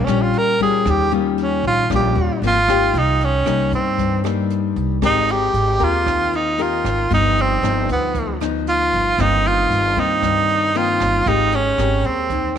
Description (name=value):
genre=bossa nova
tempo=115 BPM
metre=4/4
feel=straight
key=Ab major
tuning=A4 = 440 Hz
part: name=breathy tenor saxophone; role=melody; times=0.0-12.6 s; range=Bb3 to Bb4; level=-18 LUFS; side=right 2 dB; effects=none
part: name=nylon-string guitar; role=accompaniment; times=0.0-12.6 s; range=G2 to Bb4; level=-22 LUFS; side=left 10 dB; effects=none
part: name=upright bass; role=bass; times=0.0-12.6 s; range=G1 to G2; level=-22 LUFS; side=right 2 dB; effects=none
part: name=jazz brush drum kit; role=drums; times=0.1-12.6 s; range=hi-hat, kick drum, rim click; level=-31 LUFS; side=right 7 dB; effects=none
room=moderate plate reverb, RT60 2.4 s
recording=1960s-style stereo with parts hard left and right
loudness=-15 LUFS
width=side -8 dB against mid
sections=0.0-2.9 A section; 2.9-12.6 B section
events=tenor saxophone solo 0.0-2.9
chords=0.0 Eb9; 2.4 Ab69; 2.9 Cm7; 5.0 Abmaj9; 7.1 G7b13; 9.2 Cm7/G; 11.3 Abmaj9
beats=0.34 | 0.86 1.38 1.90 2.42 | 2.94 3.46 3.98 4.50 | 5.02 5.54 6.06 6.58 | 7.10 7.62 8.14 8.66 | 9.18 9.70 10.22 10.74 | 11.26 11.78 12.30